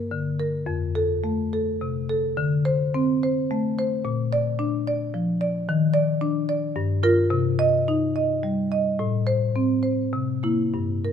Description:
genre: classical, contemporary piece for solo marimba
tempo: 96-113 BPM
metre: 3/4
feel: rubato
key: unclear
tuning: A4 = 440 Hz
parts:
  - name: marimba with medium mallets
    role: solo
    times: 0.0-11.1 s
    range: F2 to Eb5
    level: -21 LUFS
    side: left 1 dB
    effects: none
room: moderate recital hall reverb, RT60 1.5 s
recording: close, detailed microphones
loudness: -21 LUFS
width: side -8 dB against mid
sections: 0.0-11.1 A section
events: none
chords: 0.0 Gm; 0.7 F; 2.4 D5; 4.1 Bb; 5.7 N.C.; 6.8 Gm7; 7.3 Cm; 9.0 Am; 10.1 C7

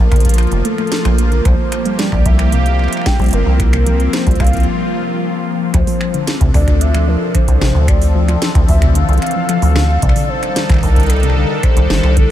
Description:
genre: IDM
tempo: 112 BPM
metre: 4/4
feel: straight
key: D minor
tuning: A4 = 442 Hz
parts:
  - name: warbly nostalgic lead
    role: melody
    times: 0.0-12.3 s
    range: A4 to G5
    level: -22 LUFS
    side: equal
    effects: chorus, diffuse ambient delay
  - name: phased analog pad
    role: sustained chords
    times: 0.0-12.3 s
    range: E3 to A5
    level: -20 LUFS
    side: left 2 dB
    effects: phaser, chorus
  - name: deep acid bass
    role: bass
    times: 0.0-12.3 s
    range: F1 to D2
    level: -13 LUFS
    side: equal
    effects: none
  - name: warbly dusty pluck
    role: arpeggios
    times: 0.1-12.2 s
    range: C3 to A3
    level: -22 LUFS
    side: equal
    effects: chorus, diffuse ambient delay
  - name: electronic kick drum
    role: drums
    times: 0.1-12.3 s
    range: none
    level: -15 LUFS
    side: equal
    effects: none
  - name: organic electronic drum kit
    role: drums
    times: 0.1-12.3 s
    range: finger snaps, hi-hat, snare drum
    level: -24 LUFS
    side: right 1 dB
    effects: overdrive
room: light reverb, digital ambience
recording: none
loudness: -11 LUFS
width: side -12 dB against mid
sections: 0.0-5.7 A section; 5.7-12.3 B section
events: break 4.7-5.7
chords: 0.0 Bbmaj7; 1.5 C7sus4; 5.7 Dm7; 10.0 F13 (rootless)

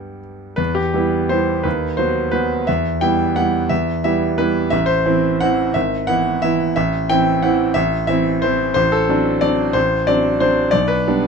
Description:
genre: classical, piano waltz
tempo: 153-190 BPM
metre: 3/4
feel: rubato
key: E minor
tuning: A4 = 440 Hz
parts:
  - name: bright concert grand piano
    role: solo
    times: 0.0-11.3 s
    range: G#1 to G5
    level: -15 LUFS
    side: equal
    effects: none
room: light reverb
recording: close, detailed microphones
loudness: -15 LUFS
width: side -5 dB against mid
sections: 0.6-11.3 A section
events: none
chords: 0.0 G; 0.6 Em; 1.7 B/D#; 2.7 Em; 4.7 Am; 5.8 E/G#; 6.8 Am; 8.8 D7/A; 10.7 G/B

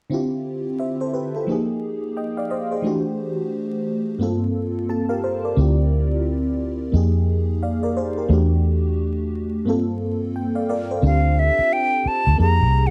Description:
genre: R&B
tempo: 88 BPM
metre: 4/4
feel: swing 61% on 16ths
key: unclear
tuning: A4 = 439 Hz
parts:
  - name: FM electric piano with soft pad layer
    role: accompaniment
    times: 0.1-12.9 s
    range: G2 to A5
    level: -25 LUFS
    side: equal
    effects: chorus, phaser
  - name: vintage muted fingered electric bass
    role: bass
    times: 5.6-12.9 s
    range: C2 to F2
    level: -21 LUFS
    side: equal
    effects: none
  - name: breathy silver concert flute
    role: melody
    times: 11.1-12.9 s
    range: E5 to Bb5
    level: -22 LUFS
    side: equal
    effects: none
room: light reverb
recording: dark, warm production, vinyl crackle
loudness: -22 LUFS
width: mono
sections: 0.1-11.0 A section; 11.0-12.9 B section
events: FM electric piano fill 4.5-5.6, 10.0-11.0; break 9.7-11.0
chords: 0.1 Dm11; 1.5 Fm11; 2.8 Em11; 4.2 Gm11; 5.6 Dm11; 6.9 Fm11; 8.3 Em11; 9.7 Gm11; 11.0 Dm7; 12.4 Fm11

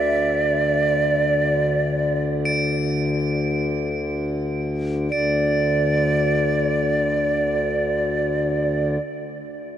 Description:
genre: world meditative, free-time meditation music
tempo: free time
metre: none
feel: none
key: unclear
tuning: A4 = 439 Hz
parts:
  - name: bright Native American-style cedar flute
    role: melody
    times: 0.0-9.0 s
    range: D5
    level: -22 LUFS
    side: right 3 dB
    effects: diffuse ambient delay
  - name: pedal harmonium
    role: drone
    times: 0.0-9.0 s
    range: D2 to D3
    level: -23 LUFS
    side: left 2 dB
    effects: none
  - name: crotales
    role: texture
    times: 0.0-9.0 s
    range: B6 to D7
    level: -31 LUFS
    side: equal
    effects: none
room: wet huge ambient reverb, RT60 6.4 s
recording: cassette tape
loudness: -19 LUFS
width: side -10 dB against mid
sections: 0.0-5.1 A section; 5.1-9.5 B section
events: none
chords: none

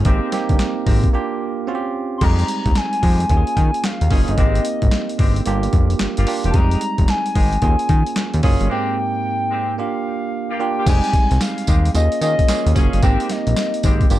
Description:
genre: R&B, new jack swing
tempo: 111 BPM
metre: 4/4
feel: swing 64% on 16ths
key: F minor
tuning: A4 = 441 Hz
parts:
  - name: barky tine electric piano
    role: accompaniment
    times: 0.0-14.2 s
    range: Ab2 to Ab4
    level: -23 LUFS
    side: right 6 dB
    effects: none
  - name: mellow horn section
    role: stabs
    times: 0.0-14.1 s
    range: Ab3 to Ab4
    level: -30 LUFS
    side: left 4 dB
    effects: none
  - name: fat analog bass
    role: bass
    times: 0.0-14.2 s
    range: E1 to Eb3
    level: -18 LUFS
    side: equal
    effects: none
  - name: boom bap sampler-style drum kit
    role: drums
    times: 0.0-14.2 s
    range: crash cymbal, handclaps, hi-hat, kick drum, snare drum, tambourine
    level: -18 LUFS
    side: equal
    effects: overdrive
  - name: hollow clarinet-like synth lead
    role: melody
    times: 2.2-14.1 s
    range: Eb5 to C6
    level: -23 LUFS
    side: left 2 dB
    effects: chorus, ping-pong delay
room: little or no reverb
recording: dark, warm production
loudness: -16 LUFS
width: side -14 dB against mid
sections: 0.0-2.2 A section; 2.2-10.9 B section; 10.9-14.2 C section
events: break 1.1-2.2, 8.7-10.9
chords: 0.1 Abmaj7; 1.1 Gm7; 1.7 Dbmaj7#11/C; 2.2 Fm9; 3.3 Eb7sus4; 4.4 Abmaj7; 5.5 Gm7; 6.5 Fm9; 7.6 Eb7sus4; 8.7 Abmaj7; 9.8 Gm7; 10.9 Fm9; 11.9 Eb7sus4; 13.0 Abmaj7

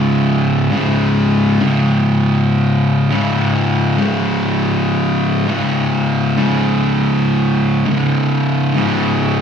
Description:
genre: metal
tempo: 101 BPM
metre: 4/4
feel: straight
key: unclear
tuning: A4 = 440 Hz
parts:
  - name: fuzz guitar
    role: solo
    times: 0.0-9.4 s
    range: C#2 to C#3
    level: -13 LUFS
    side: equal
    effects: distortion, ping-pong delay
room: moderate club reverb, RT60 0.8 s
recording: live gig heard through the venue's PA, club reverb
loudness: -13 LUFS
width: side -7 dB against mid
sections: 0.0-7.9 A section; 7.9-9.4 B section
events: none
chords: 0.0 C#5

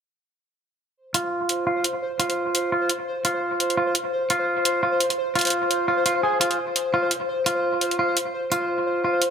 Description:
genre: half-time drum and bass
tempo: 171 BPM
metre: 4/4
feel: swing 57% on 16ths, half-time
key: unclear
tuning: A4 = 440 Hz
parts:
  - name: pulsing gated texture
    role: texture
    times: 1.5-9.3 s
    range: C5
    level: -27 LUFS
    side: left 2 dB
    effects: chorus, built-in reverb
  - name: clean electric guitar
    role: arpeggios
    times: 1.1-9.2 s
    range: F4 to Ab4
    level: -23 LUFS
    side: right 1 dB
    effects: low-pass filter, digital delay
  - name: electronic hi-hat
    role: drums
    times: 1.1-9.3 s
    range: none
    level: -23 LUFS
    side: equal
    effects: none
room: light reverb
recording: none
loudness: -21 LUFS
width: side -7 dB against mid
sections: 1.0-9.3 A section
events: none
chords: 1.0 F5

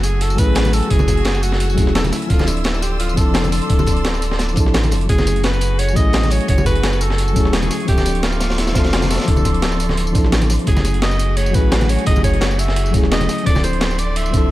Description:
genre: liquid drum and bass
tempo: 172 BPM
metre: 4/4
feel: swing 54% on 16ths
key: unclear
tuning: A4 = 440 Hz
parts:
  - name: bright alto saxophone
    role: melody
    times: 0.0-14.5 s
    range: E4 to E5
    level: -24 LUFS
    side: right 1 dB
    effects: dub echo
  - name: mellow FM electric piano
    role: accompaniment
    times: 0.0-14.5 s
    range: F3 to G#5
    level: -22 LUFS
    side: left 2 dB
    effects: chorus
  - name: clear studio string section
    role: sustained chords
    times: 0.0-14.5 s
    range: F3 to E6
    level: -28 LUFS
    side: right 1 dB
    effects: none
  - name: warm sub bass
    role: bass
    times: 0.0-14.5 s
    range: D1 to A1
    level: -19 LUFS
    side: equal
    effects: none
  - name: breakbeat sampler-style drum kit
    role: drums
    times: 0.0-14.4 s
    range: hi-hat, ride cymbal, snare drum, tambourine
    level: -23 LUFS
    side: equal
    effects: none
  - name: crunchy breakbeat drum kit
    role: drums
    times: 0.0-14.4 s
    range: hi-hat, snare drum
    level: -28 LUFS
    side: equal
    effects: high-pass filter on hats, high-pass filter on snare, high-pass filter on room
  - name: electronic kick drum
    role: drums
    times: 0.4-14.4 s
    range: none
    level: -17 LUFS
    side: equal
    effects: none
  - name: congas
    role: percussion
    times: 0.6-13.6 s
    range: none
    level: -26 LUFS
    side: right 1 dB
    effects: none
room: small room ambience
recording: none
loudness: -14 LUFS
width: side -16 dB against mid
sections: 0.0-14.5 A section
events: none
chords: 0.0 F#m9; 2.3 Dm9; 5.1 F#m9; 7.9 Dm9; 10.7 F#m9; 13.5 Dm9

